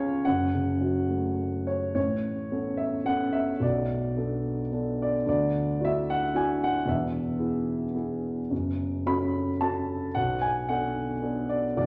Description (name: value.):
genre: classical, lyrical solo piano.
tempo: 110 BPM.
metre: 3/4.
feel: rubato.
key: A major.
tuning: A4 = 439 Hz.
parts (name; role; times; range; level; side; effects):
dark concert grand piano; solo; 0.0-11.9 s; E1 to B5; -28 LUFS; equal; none.
room: wet recital hall reverb, RT60 1.5 s.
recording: none.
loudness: -28 LUFS.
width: mono.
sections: 0.0-2.0 A section; 2.0-11.9 B section.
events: none.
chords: 0.3 F#m; 2.0 Aadd9; 3.6 Bm7; 5.3 Dadd9; 6.9 E; 8.5 F#m; 10.2 Bm7.